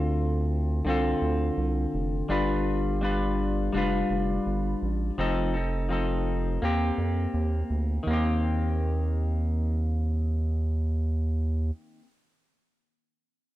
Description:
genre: indie pop, bedroom pop.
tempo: 83 BPM.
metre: 4/4.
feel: straight.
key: Eb lydian.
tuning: A4 = 444 Hz.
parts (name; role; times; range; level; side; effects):
clean electric guitar; accompaniment; 0.0-12.1 s; D3 to B4; -28 LUFS; left 2 dB; lush chorus, warbly pitch drift.
round analog bass; bass; 0.0-11.7 s; F1 to F2; -27 LUFS; right 1 dB; none.
room: little or no reverb.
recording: dry, close 1970s-style studio recording.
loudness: -25 LUFS.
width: side -15 dB against mid.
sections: 0.0-8.1 A section; 8.1-11.0 B section.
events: none.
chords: 0.0 Dm7; 2.3 G7; 5.2 F7; 6.6 Eb6.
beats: 0.14 0.86 1.58 | 2.30 3.02 3.74 4.46 | 5.18 5.90 6.62 7.34 | 8.07 8.79 9.51 10.23.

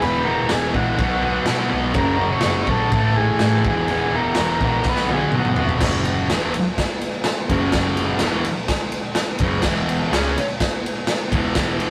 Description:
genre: garage rock duo or trio.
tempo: 125 BPM.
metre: 4/4.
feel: straight.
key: unclear.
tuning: A4 = 440 Hz.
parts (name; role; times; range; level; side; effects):
overdriven combo organ; melody; 0.0-5.7 s; F#4 to C#5; -26 LUFS; equal; none.
thick fuzz guitar; riff; 0.0-11.9 s; E2 to C#4; -24 LUFS; equal; distortion.
hollow-body short-scale picked electric bass; bass; 0.0-11.9 s; E1 to B2; -28 LUFS; equal; none.
raw garage drum kit; drums; 0.0-11.9 s; crash cymbal, kick drum, ride cymbal, snare drum, toms; -24 LUFS; equal; none.
room: moderate small room reverb, RT60 0.5 s.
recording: rough rehearsal-room recording, tube saturation.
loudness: -20 LUFS.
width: mono.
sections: 0.0-5.8 A section; 5.8-11.9 B section.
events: drum fill 4.9-5.8.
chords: 0.0 E5; 1.0 B5; 2.0 F#; 2.9 A5; 3.6 E; 4.9 B5; 5.8 F#5; 9.7 E5.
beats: | 0.03 0.51 0.99 1.48 | 1.96 2.44 2.93 3.41 | 3.89 4.37 4.85 5.33 | 5.82 6.30 6.78 7.26 | 7.74 8.22 8.70 9.17 | 9.65 10.13 10.61 11.09 | 11.57.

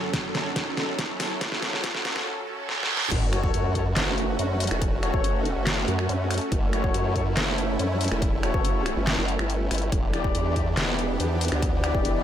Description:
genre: heavy wobble dubstep.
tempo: 141 BPM.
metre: 4/4.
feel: half-time.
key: F# phrygian.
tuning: A4 = 441 Hz.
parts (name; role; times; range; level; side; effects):
supersaw pad; sustained chords; 0.0-12.2 s; F#2 to A4; -30 LUFS; right 1 dB; sidechain pumping.
riser, reverse cymbal and sub drop; sound effects; 0.1-4.8 s; none; -34 LUFS; right 2 dB; none.
dubstep drum kit; drums; 0.1-12.1 s; crash cymbal, finger snaps, handclaps, hi-hat, snare drum; -28 LUFS; equal; none.
electronic kick drum; drums; 0.1-12.0 s; none; -27 LUFS; equal; none.
formant-sweep wobble bass; bass; 3.1-11.9 s; E1 to F#2; -27 LUFS; equal; chorus, overdrive.
mellow brass ensemble; stabs; 3.3-12.2 s; E4 to D5; -31 LUFS; left 6 dB; ping-pong delay.
formant-sweep wobble bass; bass; 4.0-12.2 s; E1 to F#2; -27 LUFS; equal; chorus, overdrive.
room: light reverb.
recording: high-pass filter.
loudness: -23 LUFS.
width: side -10 dB against mid.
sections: 0.0-3.1 A section; 3.1-12.2 B section.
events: build-up 0.0-3.1; drum fill 0.0-2.3, 2.7-3.1; filter sweep 0.0-3.1; riser 0.1-2.3; reverse cymbal 2.3-3.1; drop 3.1-12.2; impact 3.1-4.8.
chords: 0.0 F#m; 9.9 Em7.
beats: 0.14 0.56 0.99 | 1.41 1.84 2.26 2.69 | 3.11 3.54 3.96 4.39 | 4.82 5.24 5.67 6.09 | 6.52 6.94 7.37 7.79 | 8.22 8.65 9.07 9.50 | 9.92 10.35 10.77 11.20 | 11.62 12.05.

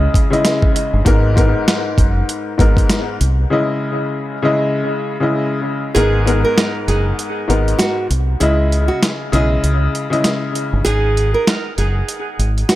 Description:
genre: hip hop, boom-bap hip-hop.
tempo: 98 BPM.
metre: 4/4.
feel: swing 58% on 16ths.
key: G# minor.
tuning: A4 = 440 Hz.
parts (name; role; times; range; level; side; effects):
clear upright piano; accompaniment; 0.0-10.8 s; G#2 to D#5; -18 LUFS; left 2 dB; cassette tape, analog delay.
deep dub fingered electric bass; bass; 0.0-12.6 s; F#1 to C#2; -16 LUFS; equal; none.
dusty soul sampler-style drum kit; drums; 0.1-12.8 s; hi-hat, kick drum, snare drum; -16 LUFS; equal; overdrive.
nylon-string guitar; melody; 5.9-12.8 s; E4 to A#4; -21 LUFS; right 2 dB; analog delay.
warm saxophone section; stabs; 5.9-12.4 s; D#3 to A#4; -25 LUFS; right 3 dB; analog delay.
room: light reverb, studio reverb.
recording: echo-heavy mix.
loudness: -14 LUFS.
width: side -15 dB against mid.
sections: 0.0-6.0 A section; 6.0-12.8 B section.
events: break 3.5-6.0; kick muted 6.0-12.8.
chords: 0.0 C#madd9; 1.1 G#madd9; 3.5 C#madd9; 6.0 G#madd9; 8.4 C#madd9; 10.9 G#m.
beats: 0.45 | 1.06 1.67 2.28 2.90 | 3.51 4.12 4.73 5.34 | 5.96 6.57 7.18 7.79 | 8.41 9.02 9.63 10.24 | 10.86 11.47 12.08 12.69.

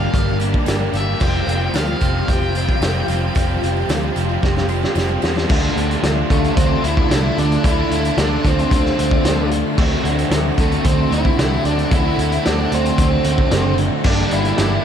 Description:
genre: rock, shoegaze and dream pop.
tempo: 112 BPM.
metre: 4/4.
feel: straight.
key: D minor.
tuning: A4 = 442 Hz.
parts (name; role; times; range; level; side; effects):
octave-fuzz lead guitar; melody; 0.0-14.8 s; A3 to G5; -24 LUFS; right 1 dB; distortion, digital delay.
icy glass pad; sustained chords; 0.0-14.8 s; Bb3 to D6; -29 LUFS; equal; chorus, built-in reverb.
crunchy overdriven guitar; riff; 0.0-14.8 s; G2 to G4; -24 LUFS; left 13 dB; ensemble chorus.
crunchy overdriven guitar; riff; 0.0-14.8 s; G2 to G4; -26 LUFS; equal; none.
overdriven electric guitar; riff; 0.0-14.8 s; G2 to G4; -24 LUFS; right 13 dB; reverse reverb.
picked electric bass; bass; 0.0-14.8 s; F1 to E2; -21 LUFS; equal; none.
loose indie drum kit; drums; 0.1-14.7 s; crash cymbal, hi-hat, kick drum, snare drum; -20 LUFS; equal; none.
tambourine; percussion; 0.3-5.4 s; none; -40 LUFS; right 12 dB; none.
room: small room ambience.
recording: dark, warm production.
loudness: -15 LUFS.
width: side -8 dB against mid.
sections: 0.0-5.5 A section; 5.5-14.8 B section.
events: drum fill 4.4-5.5.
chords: 0.0 Gm; 1.2 Fsus2; 5.5 Dm7; 9.8 D7; 14.1 Gm.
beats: 0.13 0.67 | 1.20 1.74 2.28 2.81 | 3.35 3.89 4.42 4.96 | 5.50 6.03 6.57 7.10 | 7.64 8.17 8.71 9.24 | 9.78 10.31 10.85 11.38 | 11.92 12.45 12.98 13.52 | 14.05 14.59.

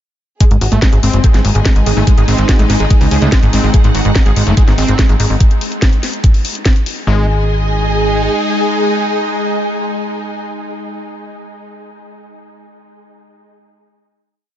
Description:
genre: psychedelic trance.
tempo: 144 BPM.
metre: 4/4.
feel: straight.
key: G# major.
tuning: A4 = 440 Hz.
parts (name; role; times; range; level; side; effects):
wide unison lead; melody; 0.4-10.3 s; G#3 to G#4; -22 LUFS; equal; phaser, sidechain pumping, ping-pong delay.
evolving wavetable pad; sustained chords; 1.0-10.3 s; G#3 to D#4; -21 LUFS; equal; phaser, built-in reverb, sidechain pumping.
screaming distorted acid line; riff; 0.4-7.3 s; G#3 to B#3; -23 LUFS; moving between left 4 dB and right 4 dB; distortion, chorus, auto-pan, sidechain pumping, diffuse ambient delay.
drum and bass drum kit; drums; 0.4-6.9 s; hi-hat, snare drum; -21 LUFS; left 1 dB; none.
electronic kick drum; drums; 0.4-6.7 s; none; -10 LUFS; equal; none.
warm symphonic string section; texture; 0.4-10.4 s; G#4 to G#5; -24 LUFS; left 1 dB; sidechain pumping.
plucky analog bass; bass; 0.5-8.3 s; F#1 to C#2; -14 LUFS; equal; none.
resonant blip pluck; second line; 1.2-5.4 s; G#3 to B#3; -35 LUFS; left 3 dB; none.
room: light reverb.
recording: nothing above 7.5 kHz.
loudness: -10 LUFS.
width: side -12 dB against mid.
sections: 0.4-7.1 groove; 7.1-10.4 final chord.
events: filter sweep on acid bass 0.4-5.4.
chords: 0.4 G#5.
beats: | 0.41 0.82 1.24 1.66 | 2.07 2.49 2.90 3.32 | 3.74 4.16 4.57 4.99 | 5.41 5.82 6.24 6.66 | 7.07 7.49 7.91 8.32 | 8.74 9.15 9.57 9.99.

